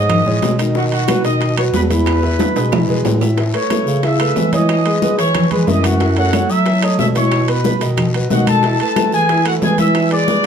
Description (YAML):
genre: latin, salsa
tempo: 183 BPM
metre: 4/4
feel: straight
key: E major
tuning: A4 = 440 Hz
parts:
  - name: mellow trumpet section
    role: melody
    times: 0.0-10.5 s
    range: F#4 to E6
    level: -18 LUFS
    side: equal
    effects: none
  - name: clear concert grand piano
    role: accompaniment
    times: 0.0-10.5 s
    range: D#3 to E5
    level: -20 LUFS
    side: right 1 dB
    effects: none
  - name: mellow bass clarinet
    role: bass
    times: 0.0-10.5 s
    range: E2 to F#3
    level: -18 LUFS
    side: equal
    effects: none
  - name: bongos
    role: percussion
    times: 0.1-10.4 s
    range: none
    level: -26 LUFS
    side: left 5 dB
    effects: none
  - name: claves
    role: percussion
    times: 0.1-10.1 s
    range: none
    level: -32 LUFS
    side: right 6 dB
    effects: none
  - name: congas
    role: percussion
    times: 0.1-10.4 s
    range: none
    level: -21 LUFS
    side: left 2 dB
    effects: none
  - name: guiro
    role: percussion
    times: 0.1-10.5 s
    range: none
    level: -31 LUFS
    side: left 6 dB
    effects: none
  - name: timbales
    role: percussion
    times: 0.1-10.5 s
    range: none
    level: -25 LUFS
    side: right 7 dB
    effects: none
room: moderate studio reverb, RT60 0.7 s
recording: none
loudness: -13 LUFS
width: side -7 dB against mid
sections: 0.0-3.4 A section; 3.4-10.5 B section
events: drum fill 2.4-3.4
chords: 0.0 C#sus2; 0.8 B; 2.1 E; 3.4 Aadd9; 4.7 Emaj7; 6.0 F#m7; 7.3 Bsus4; 8.0 B; 8.6 B7sus4; 10.0 E7